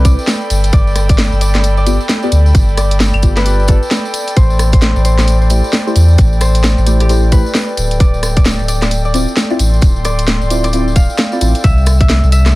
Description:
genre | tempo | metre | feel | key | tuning
UK garage, two-step garage | 132 BPM | 4/4 | swing 61% on 16ths | D dorian | A4 = 441 Hz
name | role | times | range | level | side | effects
concert harp | melody | 0.0-12.6 s | G4 to F5 | -22 LUFS | left 2 dB | none
deep mellow chord stab | stabs | 0.0-11.5 s | A3 to D5 | -20 LUFS | left 1 dB | chorus, phaser
saturated sub bass | bass | 0.0-12.6 s | D1 to E2 | -12 LUFS | equal | none
electronic kick drum | drums | 0.0-12.1 s | none | -10 LUFS | equal | none
garage drum kit | drums | 0.0-12.5 s | claves, hi-hat, rim click, snare drum | -17 LUFS | equal | none
tambourine | percussion | 0.0-12.5 s | none | -27 LUFS | left 2 dB | none
airy breathy pad | texture | 0.0-12.6 s | A4 to C6 | -23 LUFS | right 1 dB | chorus, sidechain pumping
room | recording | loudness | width
digital ambience | dense, heavily limited modern master, vinyl crackle | -10 LUFS | side -19 dB against mid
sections
0.0-12.6 A section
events
break 3.9-4.4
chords
0.0 Cmaj9; 0.5 G7; 4.4 Am7; 7.8 Dm9; 11.6 Cadd9

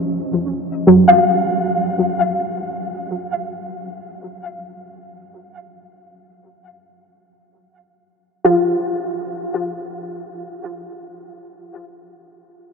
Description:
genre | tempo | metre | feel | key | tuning
ambient | free time | none | none | unclear | A4 = 439 Hz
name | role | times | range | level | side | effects
soft round pluck | solo | 0.0-12.7 s | E#3 to E#5 | -16 LUFS | equal | ensemble chorus, cassette tape, ping-pong delay
room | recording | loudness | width
wet huge ambient reverb, RT60 7.3 s | none | -15 LUFS | side -5 dB against mid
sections
0.0-12.7 A section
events
none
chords
0.0 D#m9/E#; 3.5 N.C.

